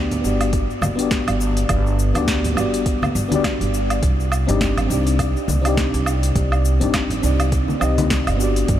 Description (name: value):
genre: sunset chillout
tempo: 103 BPM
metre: 4/4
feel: swing 57% on 16ths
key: unclear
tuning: A4 = 440 Hz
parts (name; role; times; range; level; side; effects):
- mellow FM electric piano; accompaniment; 0.0-8.8 s; B3 to Eb5; -22 LUFS; left 2 dB; chorus, auto-pan, tape echo
- upright bass; bass; 0.0-8.8 s; G1 to D2; -20 LUFS; equal; none
- smooth R&B drum kit; drums; 0.1-8.8 s; cabasa, hi-hat, snare drum, woodblock; -25 LUFS; right 1 dB; overdrive, studio ambience
- congas; percussion; 0.1-8.1 s; none; -28 LUFS; left 2 dB; none
- electronic kick drum; drums; 0.5-8.8 s; none; -24 LUFS; right 1 dB; overdrive, studio ambience
room: moderate huge ambient reverb, RT60 8.7 s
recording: dreamy mix soaked in reverb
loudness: -17 LUFS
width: side -11 dB against mid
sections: 0.0-8.8 A section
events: none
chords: 0.0 Gmaj7; 4.0 Cmadd9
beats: 0.53 1.11 | 1.70 2.28 2.86 3.44 | 4.03 4.61 5.19 5.78 | 6.36 6.94 7.52 8.11 | 8.69